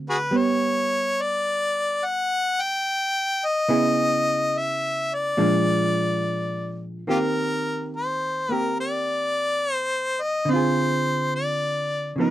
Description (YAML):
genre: jazz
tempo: 71 BPM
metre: 4/4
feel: swing 66% on 8ths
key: Eb major from 7.1 s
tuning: A4 = 437 Hz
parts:
  - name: hollow-body jazz guitar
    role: accompaniment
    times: 0.0-12.3 s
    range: A#2 to G#4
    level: -24 LUFS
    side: right 2 dB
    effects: none
  - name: clear harmonica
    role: melody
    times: 0.1-12.3 s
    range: F4 to G5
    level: -23 LUFS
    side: left 1 dB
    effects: none
room: light reverb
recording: dry, close 1970s-style studio recording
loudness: -21 LUFS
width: side -13 dB against mid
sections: 0.0-7.1 A section; 7.1-12.3 B section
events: none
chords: 0.3 G; 3.7 C#m7; 5.4 A#7; 7.1 Eb6; 10.5 Dm7b5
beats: | 0.32 1.16 2.00 2.84 | 3.67 4.51 5.36 6.22 | 7.08 7.93 8.78 9.63 | 10.48 11.33 12.18